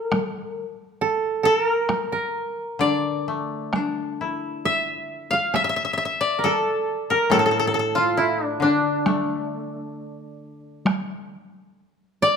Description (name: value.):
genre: japanese traditional, Japanese chamber music.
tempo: 67 BPM.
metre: 2/4.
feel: rubato.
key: D hirajoshi.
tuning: A4 = 440 Hz.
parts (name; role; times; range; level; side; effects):
koto; melody; 0.0-12.4 s; D4 to F5; -23 LUFS; left 4 dB; none.
koto; second line; 0.0-12.4 s; D4 to F5; -25 LUFS; right 5 dB; none.
taiko ensemble; percussion; 0.1-11.1 s; none; -26 LUFS; right 1 dB; none.
koto; accompaniment; 2.8-11.3 s; A2 to E4; -26 LUFS; left 4 dB; none.
room: moderate recital hall reverb, RT60 1.5 s.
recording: minimal, uncompressed stereo recording.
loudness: -20 LUFS.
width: side -6 dB against mid.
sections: 0.0-10.9 A section; 10.9-12.4 B section.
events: none.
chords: none.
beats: | 0.12 1.00 | 1.89 2.81 | 3.74 4.65 | 5.54 6.43 | 7.31 8.18 | 9.05 9.94 | 10.86 11.77.